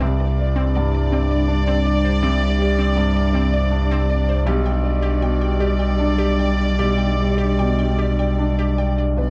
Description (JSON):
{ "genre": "neoclassical piano and strings", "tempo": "74-82 BPM", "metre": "3/4", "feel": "rubato", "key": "unclear", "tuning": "A4 = 444 Hz", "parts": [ { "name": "muted chamber violin section", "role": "melody", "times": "0.0-9.3 s", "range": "D5", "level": "-29 LUFS", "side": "equal", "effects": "plate reverb" }, { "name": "muted cello", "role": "second line", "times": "0.0-9.3 s", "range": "F#3 to G3", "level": "-27 LUFS", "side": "equal", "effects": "none" }, { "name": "clear grand piano", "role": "accompaniment", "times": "0.0-9.3 s", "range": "B1 to D5", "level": "-26 LUFS", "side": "equal", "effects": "none" }, { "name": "ethereal airy pad", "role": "sustained chords", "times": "0.2-9.3 s", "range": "D4 to D5", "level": "-33 LUFS", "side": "equal", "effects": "none" }, { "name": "glassy wavetable pluck", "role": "arpeggios", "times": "0.0-9.3 s", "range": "C4 to G5", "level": "-31 LUFS", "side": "equal", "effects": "chorus" }, { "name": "sub bass with octave", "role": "bass", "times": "0.0-9.3 s", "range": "B1 to C2", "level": "-22 LUFS", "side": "equal", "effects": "none" } ], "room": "moderate small room reverb, RT60 0.5 s", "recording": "dark, warm production", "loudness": "-19 LUFS", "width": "mono", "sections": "0.0-9.2 A section", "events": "none", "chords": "0.0 Csus2; 4.5 G/B" }